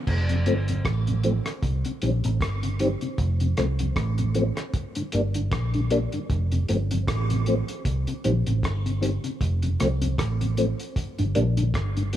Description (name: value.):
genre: dub reggae.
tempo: 77 BPM.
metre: 4/4.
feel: swing 57% on 16ths.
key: F mixolydian.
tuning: A4 = 441 Hz.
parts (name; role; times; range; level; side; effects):
vintage muted fingered electric bass; bass; 0.1-12.2 s; F1 to C2; -24 LUFS; right 1 dB; none.
cloth-damped thuddy drum kit; drums; 0.1-12.2 s; crash cymbal, hi-hat, kick drum, rim click; -30 LUFS; equal; none.
mellow tonewheel organ; accompaniment; 0.3-12.2 s; F2 to D4; -28 LUFS; left 2 dB; chorus vibrato, slow rotary speaker.
room: light reverb, studio ambience.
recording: none.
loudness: -22 LUFS.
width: side -11 dB against mid.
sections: 0.1-12.2 A section.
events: none.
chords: 0.1 F; 1.6 Cm; 3.2 F; 4.7 Gm; 6.3 F; 7.8 Cm; 9.4 F; 11.0 Gm.